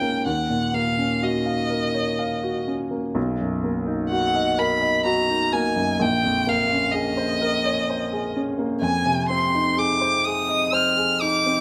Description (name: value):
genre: classical, impressionist duo for violin and grand piano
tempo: 63 BPM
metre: 3/4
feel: rubato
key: unclear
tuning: A4 = 440 Hz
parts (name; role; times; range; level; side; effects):
- rich violin; melody; 0.0-11.6 s; Eb5 to F6; -25 LUFS; equal; none
- warm baby grand piano; accompaniment; 0.0-11.6 s; Bb1 to F5; -25 LUFS; equal; none
room: moderate recital hall reverb, RT60 1.7 s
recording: close, detailed microphones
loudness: -22 LUFS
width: mono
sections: 0.0-11.6 A section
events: none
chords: 0.2 Ebm9; 3.2 Cbmaj7; 6.0 Bbm11; 8.8 Fm7